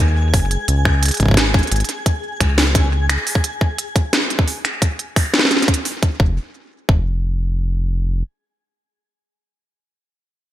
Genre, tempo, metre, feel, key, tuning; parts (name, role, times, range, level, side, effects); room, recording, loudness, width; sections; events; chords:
IDM; 87 BPM; 4/4; straight; A4 = 441 Hz
warm analog pad; sustained chords; 0.0-0.7 s; Ab3 to Cb5; -38 LUFS; right 1 dB
round analog bass; bass; 0.0-8.2 s; F1 to Eb2; -17 LUFS; equal
twinkling granular texture; texture; 0.0-3.5 s; Ab4 to Ab5; -28 LUFS; left 1 dB; built-in reverb, ensemble chorus
electronic kick drum; drums; 0.3-7.1 s; -16 LUFS; equal; overdrive, studio reverb
organic electronic drum kit; drums; 0.3-6.2 s; finger snaps, hi-hat, snare drum; -18 LUFS; right 1 dB; studio reverb, gated reverb, digital delay
light reverb; bright 1980s-style digital production; -15 LUFS; side -13 dB against mid
0.0-6.2 A section; 6.2-9.0 B section
0.0 Abm; 0.7 Db5; 3.4 N.C.